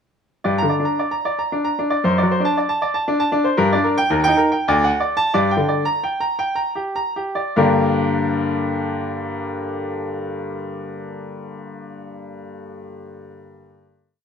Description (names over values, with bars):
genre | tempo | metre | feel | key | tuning
classical, baroque-style suite movement for grand piano | 73-120 BPM | 3/4 | rubato | G minor | A4 = 440 Hz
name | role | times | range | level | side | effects
bright baby grand piano | solo | 0.4-14.2 s | D2 to Bb5 | -18 LUFS | equal | none
room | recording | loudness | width
moderate stone room reverb, RT60 1.0 s | none | -17 LUFS | side -7 dB against mid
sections
0.5-7.6 A section; 7.6-12.3 final chord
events
slowing down 2.8-7.6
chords
0.5 Gm (rootless); 2.1 D7/F#; 3.6 Gm; 4.1 Eb; 4.7 D; 5.3 Gm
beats
| 0.46 0.99 1.52 | 2.06 2.57 3.07 | 3.59 4.12 4.69 | 5.34 6.04 6.77 | 7.57 8.37 9.17 | 9.96 10.73 11.53